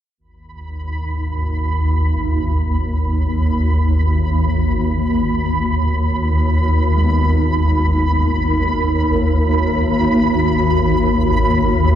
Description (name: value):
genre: dark ambient drone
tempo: free time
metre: none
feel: none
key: G# minor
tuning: A4 = 440 Hz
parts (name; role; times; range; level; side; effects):
- swarming drone; drone; 0.6-12.0 s; G#1 to D#2; -15 LUFS; equal; built-in reverb, lush chorus
- flickering grainy texture; texture; 0.8-12.0 s; B5; -23 LUFS; right 2 dB; built-in reverb, analog chorus
- gamelan-type bossed gongs; arpeggios; 2.2-12.0 s; G#3 to B3; -29 LUFS; left 2 dB; none
room: wet cathedral reverb, RT60 7.0 s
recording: dreamy mix soaked in reverb, cassette tape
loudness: -14 LUFS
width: side -10 dB against mid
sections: 0.2-12.0 A section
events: none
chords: 0.2 G#5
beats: free time